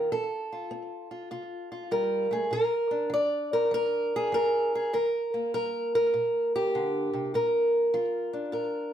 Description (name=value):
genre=acoustic country blues, solo or duo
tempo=100 BPM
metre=4/4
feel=swing 67% on 8ths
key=Bb major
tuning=A4 = 440 Hz
part: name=fingerpicked old ladder-braced acoustic guitar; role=solo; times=0.0-8.9 s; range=Bb2 to D5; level=-25 LUFS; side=equal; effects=slapback echo
room=light reverb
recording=none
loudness=-25 LUFS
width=side -10 dB against mid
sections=0.0-2.5 A section; 2.5-8.9 A section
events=none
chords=0.1 F; 2.5 Bb; 4.9 Eb; 7.3 Bb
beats=| 0.11 0.71 1.31 1.91 | 2.52 3.12 3.72 4.32 | 4.92 5.52 6.13 6.73 | 7.33 7.93 8.53